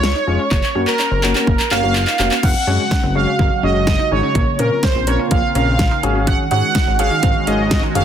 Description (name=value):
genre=synth-pop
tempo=125 BPM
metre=4/4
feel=straight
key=unclear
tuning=A4 = 443 Hz
part: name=analog synth brass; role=melody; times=0.0-8.0 s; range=Bb4 to Gb5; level=-19 LUFS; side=right 4 dB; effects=chorus
part: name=warm grand piano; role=accompaniment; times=0.0-8.0 s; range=Ab3 to Bb4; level=-23 LUFS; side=left 6 dB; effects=none
part: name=wide unison pluck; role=arpeggios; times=0.0-8.0 s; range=Bb3 to F4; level=-28 LUFS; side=right 2 dB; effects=tape echo
part: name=chorused synth bass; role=bass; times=0.0-8.0 s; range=F1 to Bb2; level=-20 LUFS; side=equal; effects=none
part: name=pop drum kit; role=drums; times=0.0-8.0 s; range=crash cymbal, handclaps, hi-hat, kick drum, snare drum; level=-18 LUFS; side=equal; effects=overdrive
part: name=sweeping resonant pad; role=sustained chords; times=2.4-8.0 s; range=Db3 to Gb4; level=-24 LUFS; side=right 1 dB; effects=chorus
room=light reverb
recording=dense, heavily limited modern master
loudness=-14 LUFS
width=side -9 dB against mid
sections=0.0-2.4 A section; 2.4-8.0 B section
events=drum fill 0.5-2.4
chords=0.0 Db; 0.5 Gb; 2.4 Gbsus2; 4.4 Bbmadd9; 6.0 Ab7sus4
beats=0.03 | 0.51 0.99 1.47 1.95 | 2.43 2.91 3.39 3.87 | 4.35 4.83 5.31 5.79 | 6.27 6.75 7.23 7.71